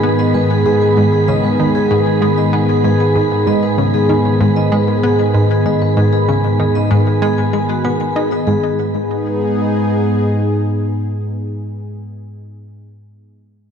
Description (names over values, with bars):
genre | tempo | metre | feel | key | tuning
ambient, sequencer-driven space music | 96 BPM | 4/4 | straight | G# minor | A4 = 439 Hz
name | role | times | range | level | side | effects
lush unison pad | sustained chords | 0.0-11.7 s | D#3 to G#4 | -18 LUFS | right 1 dB | chorus
vibraphone with medium mallets | arpeggios | 0.0-8.8 s | F#4 to G#5 | -20 LUFS | moving between left 6 dB and right 3 dB | auto-pan, ping-pong delay
analog pluck | riff | 0.0-8.8 s | G#2 to D#4 | -18 LUFS | equal | chorus, ping-pong delay
analog drone | bass | 0.0-10.3 s | G#2 | -18 LUFS | equal | chorus
wind-like tuned noise texture | texture | 0.0-8.5 s | B5 | -27 LUFS | right 3 dB | built-in reverb
room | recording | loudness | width
wet lush hall reverb, RT60 3.0 s | dark, warm production | -12 LUFS | side -7 dB against mid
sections
0.0-8.5 A section; 8.5-11.0 B section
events
none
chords
0.0 G#m